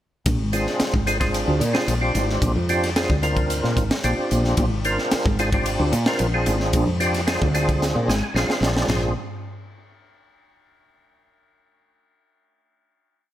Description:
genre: electric jazz fusion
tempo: 112 BPM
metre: 4/4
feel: straight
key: Bb mixolydian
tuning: A4 = 440 Hz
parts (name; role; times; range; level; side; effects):
- woody fretless electric bass; bass; 0.3-9.1 s; Ab1 to Bb2; -22 LUFS; equal; lush chorus
- crisp fusion drum kit; drums; 0.3-9.0 s; crash cymbal, hi-hat, kick drum, ride cymbal, snare drum, toms; -24 LUFS; equal; none
- percussive tonewheel organ; accompaniment; 0.5-9.1 s; C4 to Ab5; -24 LUFS; equal; slow rotary speaker, chorus vibrato
room: light reverb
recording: none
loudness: -19 LUFS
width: side -12 dB against mid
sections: 0.3-8.9 groove; 8.9-11.0 final chord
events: drum fill 7.8-8.9; tonewheel organ fill 7.8-8.9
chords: 0.3 Bb9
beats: | 0.27 0.81 1.34 1.88 | 2.42 2.96 3.50 4.04 | 4.58 5.12 5.66 6.20 | 6.74 7.28 7.82 8.35 | 8.89

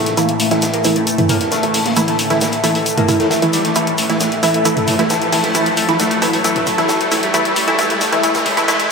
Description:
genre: driving peak-time techno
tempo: 134 BPM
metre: 4/4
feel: straight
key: unclear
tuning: A4 = 440 Hz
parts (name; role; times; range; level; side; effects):
- overdriven synth lead; riff; 0.0-8.8 s; G3 to Bb3; -20 LUFS; left 1 dB; distortion, phaser, wide subtle chorus, ping-pong delay
- growling FM bass; bass; 0.0-8.6 s; G1 to A2; -30 LUFS; equal; none
- overtone-sweeping drone; drone; 0.0-8.9 s; A2 to E3; -24 LUFS; equal; chorus, built-in reverb
- riser; sound effects; 0.3-8.9 s; none; -25 LUFS; right 1 dB; none
- punchy analog drum machine; drums; 0.1-8.9 s; hi-hat, toms; -21 LUFS; left 1 dB; overdrive
- raw garage drum kit; drums; 0.1-8.8 s; hi-hat, shaker, snare drum; -25 LUFS; left 1 dB; high-pass filter on hats, high-pass filter on snare, high-pass filter on perc, high-pass filter on room, gated reverb
- filtered dub chord stab; stabs; 0.2-8.8 s; E3 to E4; -17 LUFS; right 1 dB; wide subtle chorus, digital delay
room: wet lush hall reverb, RT60 2.1 s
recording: bright 1980s-style digital production, high-pass filter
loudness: -13 LUFS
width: side -4 dB against mid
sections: 0.0-8.9 A section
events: build-up 0.0-8.9; filter sweep on analog synth lead 0.0-8.9; filter sweep on synth stab 0.0-8.9; riser 0.3-8.9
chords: 0.0 A5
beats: | 0.17 0.62 1.07 1.52 | 1.97 2.41 2.86 3.31 | 3.76 4.20 4.65 5.10 | 5.55 6.00 6.44 6.89 | 7.34 7.79 8.23 8.68

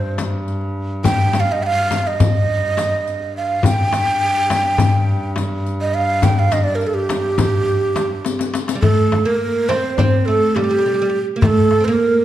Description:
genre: Turkish makam ensemble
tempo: 208 BPM (eighths)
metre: 9/8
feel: straight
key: unclear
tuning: A4 = 438 Hz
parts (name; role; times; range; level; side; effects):
- breathy ney; melody; 0.0-12.2 s; G4 to G5; -18 LUFS; right 2 dB; slapback echo
- rich double bass; drone; 0.0-8.9 s; G2; -25 LUFS; equal; none
- darbuka; percussion; 0.2-11.8 s; none; -20 LUFS; left 2 dB; none
- frame drum; percussion; 0.2-11.6 s; none; -23 LUFS; left 3 dB; none
- riq; percussion; 0.2-8.8 s; none; -28 LUFS; left 7 dB; none
- oud; second line; 8.8-12.2 s; G3 to C4; -19 LUFS; right 3 dB; none
room: wet recital hall reverb, RT60 1.3 s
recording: dark, warm production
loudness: -15 LUFS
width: side -12 dB against mid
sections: 0.0-8.8 A section; 8.8-12.2 B section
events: drum fill 8.3-8.8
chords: none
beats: 0.19 0.47 0.76 | 1.05 1.34 1.63 1.92 2.20 2.49 2.78 3.07 3.35 | 3.64 3.93 4.22 4.51 4.79 5.08 5.37 5.66 5.95 | 6.24 6.52 6.81 7.10 7.39 7.68 7.96 8.25 8.54 | 8.83 9.12 9.41 9.69 9.98 10.27 10.56 10.85 11.14 | 11.43 11.71 12.00

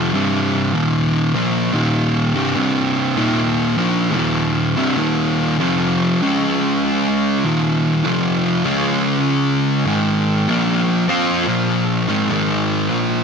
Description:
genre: metal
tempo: 98 BPM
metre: 4/4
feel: swing 64% on 8ths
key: unclear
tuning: A4 = 441 Hz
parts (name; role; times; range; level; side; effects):
- fuzz guitar; solo; 0.0-13.2 s; C2 to F4; -15 LUFS; equal; distortion, digital delay
room: little or no reverb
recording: none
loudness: -15 LUFS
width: side -6 dB against mid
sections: 0.1-13.2 A section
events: none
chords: 0.1 C5; 0.7 Eb5; 1.3 Bb5; 1.6 Eb5; 2.3 C5; 3.2 Eb5; 3.8 Bb5; 4.1 Eb5; 4.7 C5; 5.0 Eb5; 5.6 F5; 6.2 Db5; 7.4 Eb5; 8.0 F5; 8.7 Db5; 9.9 Ab5; 10.5 Bb5; 11.1 F5; 11.4 Bb5; 12.0 Ab5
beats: | 0.12 0.73 1.34 1.95 | 2.56 3.17 3.78 4.39 | 5.00 5.61 6.21 6.82 | 7.43 8.04 8.65 9.26 | 9.87 10.47 11.08 11.69 | 12.30 12.91

